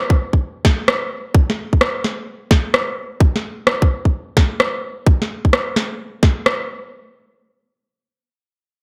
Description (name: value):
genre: UK garage, two-step garage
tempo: 129 BPM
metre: 4/4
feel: swing 65% on 16ths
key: none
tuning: none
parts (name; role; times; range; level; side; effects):
- electronic kick drum; drums; 0.1-6.3 s; none; -16 LUFS; equal; none
- electronic snare drum and rim click; drums; 0.6-6.6 s; none; -21 LUFS; equal; none
room: moderate plate reverb, RT60 1.3 s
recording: none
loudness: -18 LUFS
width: mono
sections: 0.0-6.9 A section; 6.9-8.8 B section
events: none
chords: none